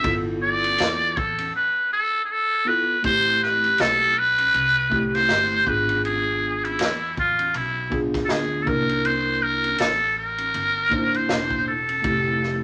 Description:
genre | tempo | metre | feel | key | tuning
hip hop, jazz-hop | 80 BPM | 4/4 | swing 59% on 16ths | A minor | A4 = 439 Hz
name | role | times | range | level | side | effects
trumpet with metal mute | melody | 0.0-12.6 s | E4 to E5 | -23 LUFS | equal | none
mellow tine electric piano | accompaniment | 0.0-12.6 s | A3 to C5 | -29 LUFS | equal | none
upright bass | bass | 0.0-12.6 s | E1 to E2 | -35 LUFS | equal | none
vintage drum kit | drums | 0.0-12.5 s | hi-hat, kick drum, ride cymbal, snare drum | -32 LUFS | equal | none
room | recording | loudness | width
moderate small room reverb, RT60 0.5 s | none | -22 LUFS | mono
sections
0.0-3.0 A section; 3.0-12.6 B section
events
silent gap 1.5-3.0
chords
0.0 G13; 3.0 Am9; 5.7 E7b9/G#; 8.7 C13; 12.0 Fmaj7

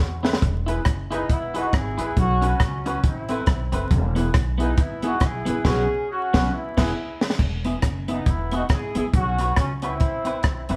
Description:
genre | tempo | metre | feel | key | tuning
ska | 138 BPM | 4/4 | swing 59% on 8ths | E major | A4 = 440 Hz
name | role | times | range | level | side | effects
warm horn section | melody | 0.0-10.7 s | F#3 to G#4 | -29 LUFS | equal | none
warm upright piano | stabs | 0.0-6.9 s | C4 to B4 | -33 LUFS | equal | none
upright bass | bass | 0.0-10.8 s | E1 to E2 | -29 LUFS | equal | none
clean electric guitar | accompaniment | 0.2-10.8 s | B3 to B4 | -32 LUFS | equal | none
compact cocktail drum kit | drums | 0.2-10.8 s | crash cymbal, hi-hat, kick drum, rim click, snare drum | -24 LUFS | equal | none
room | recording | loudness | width
moderate studio reverb, RT60 0.9 s | band playing live in one room, vinyl crackle | -23 LUFS | mono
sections
0.0-7.4 A section; 7.4-10.8 A section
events
drum fill 0.0-0.4, 6.5-7.4; band accent 5.7-7.4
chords
0.4 E; 2.2 Bsus2; 3.0 Amadd9; 3.9 E; 5.7 Bsus2; 6.5 E; 9.1 Bsus2; 10.0 Amadd9

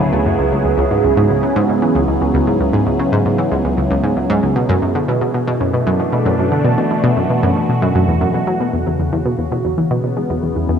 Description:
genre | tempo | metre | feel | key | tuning
ambient, sequencer-driven space music | 115 BPM | 4/4 | straight | unclear | A4 = 440 Hz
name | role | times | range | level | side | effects
phased analog pad | sustained chords | 0.0-10.8 s | D2 to G#4 | -17 LUFS | right 1 dB | phaser, chorus
analog pluck | riff | 0.0-10.7 s | C#2 to G#3 | -16 LUFS | equal | chorus, tape echo
room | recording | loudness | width
wet plate reverb, RT60 2.7 s | cassette tape | -14 LUFS | side -7 dB against mid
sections
0.0-8.7 A section; 8.7-10.8 B section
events
none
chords
0.4 C#m; 4.6 Bm; 8.7 E

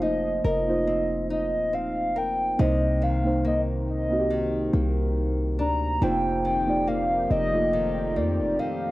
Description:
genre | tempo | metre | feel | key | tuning
R&B | 70 BPM | 4/4 | swing 54% on 16ths | unclear | A4 = 440 Hz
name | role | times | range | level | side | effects
hollow clarinet-like synth lead | melody | 0.0-8.9 s | D5 to Bb5 | -26 LUFS | equal | chorus, cassette tape
muted felt-like synth keys | accompaniment | 0.0-8.9 s | A3 to D5 | -28 LUFS | right 2 dB | chorus
nylon-string guitar | arpeggios | 0.0-8.9 s | F2 to Bb4 | -31 LUFS | left 3 dB | none
warm 808-style bass | bass | 0.0-8.6 s | Eb1 to F2 | -28 LUFS | equal | none
chorused pulse-width pad | sustained chords | 6.0-8.9 s | F3 to G4 | -32 LUFS | left 1 dB | none
room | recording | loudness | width
light reverb | home recording on cassette | -22 LUFS | side -17 dB against mid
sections
0.0-8.9 A section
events
none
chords
0.0 F7sus4; 2.6 Cm9; 6.0 F7sus4

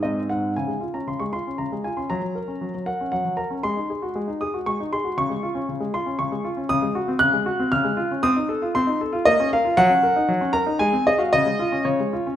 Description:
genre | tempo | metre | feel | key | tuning
classical-period piano sonatina | 117 BPM | 3/4 | straight | Db major | A4 = 436 Hz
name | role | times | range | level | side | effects
clear grand piano | solo | 0.0-12.4 s | Ab2 to Gb6 | -20 LUFS | equal | none
room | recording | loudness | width
moderate scoring stage reverb, RT60 1.4 s | recorded in a church or concert hall | -20 LUFS | side -10 dB against mid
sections
0.6-12.4 A section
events
none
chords
0.0 Ab; 0.6 Db; 2.1 Gb; 3.7 Ab7; 5.2 Db; 6.7 Ab7/Db; 7.7 Db; 8.2 F7/C; 9.3 Bbm; 9.8 Ebm7/Gb; 10.8 Ab7; 11.3 Db

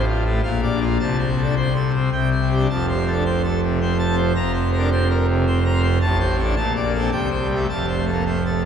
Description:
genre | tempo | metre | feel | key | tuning
classical, organ toccata | 108 BPM | 3/4 | straight | F major | A4 = 440 Hz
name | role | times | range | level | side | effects
pipe organ, full organ | solo | 0.0-8.7 s | F1 to Bb5 | -18 LUFS | equal | none
room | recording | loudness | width
wet church reverb, RT60 3.7 s | recorded in a church or concert hall | -18 LUFS | side -8 dB against mid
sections
0.0-8.7 A section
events
none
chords
0.4 Bb; 1.0 Amadd11/C; 2.1 C5; 2.7 F; 4.4 Fsus4; 6.0 Amadd11; 6.6 Bbmaj7; 7.1 C5; 7.7 F

